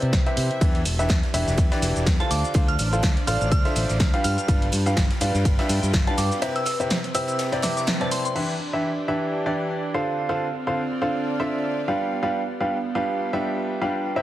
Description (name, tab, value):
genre	piano house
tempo	124 BPM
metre	4/4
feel	swing 56% on 16ths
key	D dorian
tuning	A4 = 438 Hz
part	bright upright piano	riff	0.0-14.2 s	C3 to F5	-25 LUFS	equal	vintage 12-bit sampler grit, sidechain pumping, tape echo
part	modern bright fingered electric bass	bass	0.0-6.3 s	E1 to C3	-25 LUFS	equal	sidechain pumping
part	punchy analog drum machine	drums	0.0-8.5 s	crash cymbal, hi-hat, shaker, snare drum	-28 LUFS	equal	none
part	warm symphonic string section	texture	0.0-14.2 s	B3 to G5	-32 LUFS	right 2 dB	sidechain pumping
part	electronic kick drum	drums	0.1-6.0 s	none	-21 LUFS	equal	overdrive
part	raw garage drum kit	drums	0.6-8.2 s	ride cymbal, snare drum	-38 LUFS	right 1 dB	sidechain pumping on cymbals, high-pass filter on cymbals, high-pass filter on snare, high-pass filter on room
part	soft synth bell	melody	2.2-8.3 s	A5 to F6	-30 LUFS	equal	chorus, phaser, tape echo
room	light reverb, small room ambience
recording	heavily compressed radio sound, multiband compression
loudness	-21 LUFS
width	side -14 dB against mid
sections	0.0-8.4 A section; 8.4-14.2 B section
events	break 6.4-8.4; band accent 7.9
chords	0.0 Cmaj7; 0.6 Em7; 2.3 Dm7; 4.2 G7; 6.4 Cmaj7; 8.4 Dm7; 12.0 G7